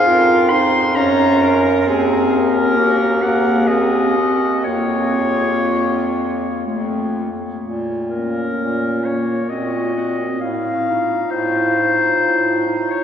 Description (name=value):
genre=classical, lyrical piece for single-reed quartet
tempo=60-68 BPM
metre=3/4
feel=rubato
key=Bb minor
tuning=A4 = 439 Hz
part: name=warm clarinet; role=melody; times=0.0-13.0 s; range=Bb4 to C6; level=-19 LUFS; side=left 3 dB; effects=none
part: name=warm alto saxophone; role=second line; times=0.0-13.0 s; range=Db4 to Db5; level=-23 LUFS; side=right 4 dB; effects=none
part: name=mellow clarinet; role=accompaniment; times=0.1-13.0 s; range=A3 to F4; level=-21 LUFS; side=equal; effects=none
part: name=clear bass clarinet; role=bass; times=0.1-13.0 s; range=Eb2 to Bb2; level=-22 LUFS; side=equal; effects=none
room=wet cathedral reverb, RT60 6.9 s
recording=heard from further back in the room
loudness=-15 LUFS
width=side -8 dB against mid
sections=0.0-7.6 A section; 7.6-13.0 B section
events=none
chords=0.0 F5; 1.0 Gb; 1.9 Ebm6; 4.7 Bbm/F; 6.7 F; 7.6 Bbm; 9.5 Cm7b5/Bb; 10.4 F7/A